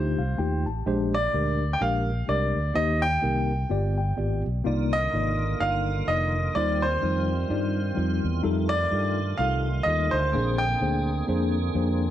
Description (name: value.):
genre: uptempo gospel.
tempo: 127 BPM.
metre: 4/4.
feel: swing 57% on 8ths.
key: Eb major.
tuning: A4 = 441 Hz.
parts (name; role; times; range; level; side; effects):
bright grand piano; melody; 0.0-11.5 s; C5 to G5; -27 LUFS; equal; none.
mellow tine electric piano; accompaniment; 0.0-12.0 s; G2 to A5; -29 LUFS; left 2 dB; medium stereo tremolo.
fingered electric bass; bass; 0.0-12.1 s; F1 to G2; -27 LUFS; equal; none.
tonewheel organ; sustained chords; 4.7-12.1 s; D3 to Ab4; -33 LUFS; right 4 dB; fast rotary speaker, chorus vibrato.
room: light reverb.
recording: none.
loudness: -23 LUFS.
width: side -12 dB against mid.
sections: 0.0-12.1 A section.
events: tine electric piano fill 0.0-0.9, 3.7-4.7.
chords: 0.0 F7; 0.9 Bb13; 2.8 Eb6; 3.7 G7; 4.7 Cm11; 6.6 Eb69; 8.4 F9; 10.3 Bb9.